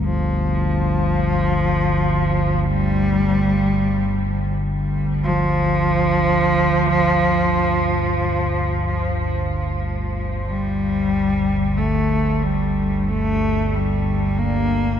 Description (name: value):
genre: dark ambient drone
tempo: free time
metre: none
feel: none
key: unclear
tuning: A4 = 440 Hz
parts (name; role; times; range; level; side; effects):
- warm cello; melody; 0.0-15.0 s; F3 to Bb3; -20 LUFS; equal; diffuse ambient delay
- gamelan-type bossed gongs; arpeggios; 0.0-15.0 s; none; barely audible; none; none
- analog drone; drone; 0.0-15.0 s; G1 to D2; -21 LUFS; equal; chorus
- sweeping resonant pad; sustained chords; 11.7-15.0 s; G3 to D4; -35 LUFS; equal; none
room: wet cathedral reverb, RT60 5.6 s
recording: none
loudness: -17 LUFS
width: side -9 dB against mid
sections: 0.0-10.5 A section; 10.5-15.0 B section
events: none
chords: 0.0 Bb/G (rootless); 10.5 G5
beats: free time